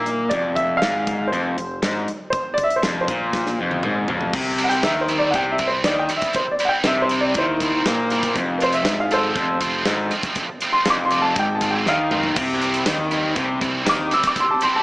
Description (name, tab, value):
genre	indie rock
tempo	120 BPM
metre	4/4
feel	straight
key	C major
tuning	A4 = 438 Hz
part	warm upright piano	melody	0.0-14.8 s	E4 to E6	-21 LUFS	equal	plate reverb
part	crunchy overdriven guitar	riff	0.0-14.1 s	F2 to Bb3	-23 LUFS	left 1 dB	none
part	growling picked electric bass	bass	0.0-14.1 s	F1 to Bb2	-30 LUFS	equal	overdrive
part	big rock drum kit	drums	0.1-14.7 s	crash cymbal, hi-hat, kick drum, snare drum, toms	-27 LUFS	equal	none
part	scooped high-gain guitar	riff	4.6-14.8 s	C3 to F4	-24 LUFS	right 2 dB	distortion, analog chorus
part	string machine, violins	sustained chords	12.4-14.8 s	C4 to G5	-33 LUFS	equal	none
part	tambourine	percussion	12.9-14.0 s	none	-39 LUFS	right 3 dB	none
room	moderate studio reverb, RT60 0.6 s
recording	small speaker sound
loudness	-18 LUFS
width	side -23 dB against mid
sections	0.0-4.3 A section; 4.3-14.8 B section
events	drum fill 3.3-4.3, 11.9-12.4; upright piano solo 4.3-14.8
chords	0.3 F5; 4.3 C; 8.4 F; 12.4 C